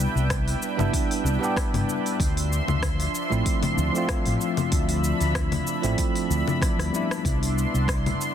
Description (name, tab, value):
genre	sunset chillout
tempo	95 BPM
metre	4/4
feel	swing 54% on 16ths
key	unclear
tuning	A4 = 440 Hz
part	barky tine electric piano	accompaniment	0.0-8.3 s	F3 to G4	-28 LUFS	moving between left 7 dB and right 9 dB	auto-pan, ping-pong delay
part	lush unison pad	sustained chords	0.0-8.3 s	F3 to C6	-29 LUFS	equal	chorus
part	mellow fretless electric bass	bass	0.0-8.1 s	G1 to D2	-25 LUFS	equal	ensemble chorus
part	deep house drum kit	drums	0.0-8.3 s	congas, hi-hat, rim click, shaker	-30 LUFS	left 3 dB	soft clipping on snare
part	electronic kick drum	drums	0.3-8.0 s	none	-27 LUFS	equal	none
room	light reverb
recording	dense, heavily limited modern master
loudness	-22 LUFS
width	side -9 dB against mid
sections	0.0-8.3 A section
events	drum fill 6.6-7.2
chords	0.0 Cmaj9; 2.2 Dm9; 7.2 Cmaj9